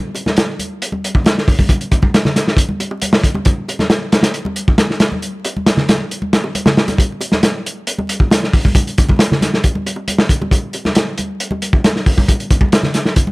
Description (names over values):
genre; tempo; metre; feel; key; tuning
breakbeat; 136 BPM; 4/4; straight; none; none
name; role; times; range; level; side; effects
bongos and congas; percussion; 0.1-13.3 s; none; -22 LUFS; equal; none
crunchy breakbeat drum kit; drums; 0.2-13.3 s; hi-hat, kick drum, snare drum; -13 LUFS; equal; none
room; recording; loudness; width
small room reverb; vinyl crackle; -13 LUFS; side -24 dB against mid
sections
0.0-13.3 A section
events
none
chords
none